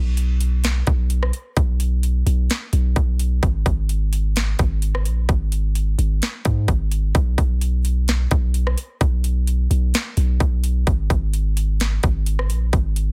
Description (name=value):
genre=hip hop, atmospheric cloud-rap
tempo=129 BPM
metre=4/4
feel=half-time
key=G# minor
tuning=A4 = 440 Hz
part: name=long sustained 808-style bass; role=bass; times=0.0-13.1 s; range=G#1 to G#2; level=-21 LUFS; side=equal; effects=none
part: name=trap drum kit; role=drums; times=0.2-13.1 s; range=hi-hat, kick drum, rim click, snare drum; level=-24 LUFS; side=equal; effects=overdrive
room=little or no reverb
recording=dense, heavily limited modern master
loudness=-20 LUFS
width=mono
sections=0.0-13.1 A section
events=none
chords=none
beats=0.17 0.64 1.10 | 1.57 2.03 2.50 2.96 | 3.43 3.89 4.36 4.82 | 5.29 5.75 6.22 6.68 | 7.15 7.61 8.08 8.54 | 9.01 9.47 9.94 10.40 | 10.87 11.33 11.80 12.26 | 12.73